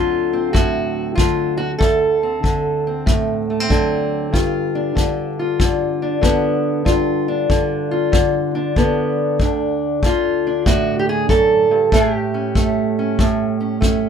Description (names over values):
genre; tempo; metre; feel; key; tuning
acoustic country blues, solo or duo; 95 BPM; 4/4; swing 67% on 8ths; unclear; A4 = 439 Hz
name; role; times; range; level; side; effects
fingerpicked steel-string acoustic guitar; melody; 0.0-14.1 s; D2 to A4; -17 LUFS; equal; none
kick drum; drums; 0.5-14.0 s; none; -18 LUFS; left 1 dB; none
room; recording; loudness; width
moderate studio reverb, RT60 0.6 s; minimal, uncompressed stereo recording; -16 LUFS; side -7 dB against mid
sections
0.0-14.1 A section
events
none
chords
0.0 D7; 4.3 G7; 9.4 D; 11.9 A7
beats
0.55 1.18 | 1.81 2.44 3.07 3.70 | 4.34 4.97 5.60 6.23 | 6.87 7.50 8.13 8.76 | 9.39 10.03 10.66 11.29 | 11.93 12.56 13.19 13.82